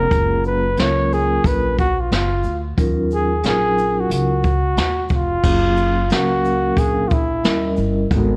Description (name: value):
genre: hip hop, jazz-hop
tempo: 90 BPM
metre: 4/4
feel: swing 62% on 16ths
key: F# major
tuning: A4 = 439 Hz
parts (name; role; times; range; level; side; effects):
- breathy flugelhorn; melody; 0.0-7.8 s; E4 to C#5; -22 LUFS; equal; none
- vibraphone with soft mallets; accompaniment; 0.0-8.4 s; F#3 to E#5; -24 LUFS; equal; none
- upright bass; bass; 0.0-8.4 s; E#1 to D#2; -25 LUFS; equal; none
- jazz brush drum kit; drums; 0.1-8.3 s; crash cymbal, hi-hat, kick drum, shaker, snare drum; -23 LUFS; equal; none
room: light reverb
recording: worn, warbling old tape, cassette tape, warbly pitch drift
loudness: -18 LUFS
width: mono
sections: 0.0-5.4 A section; 5.4-8.4 A section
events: none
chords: 0.1 F#maj9; 2.8 D#m9; 5.4 F#maj9; 7.4 D#7b9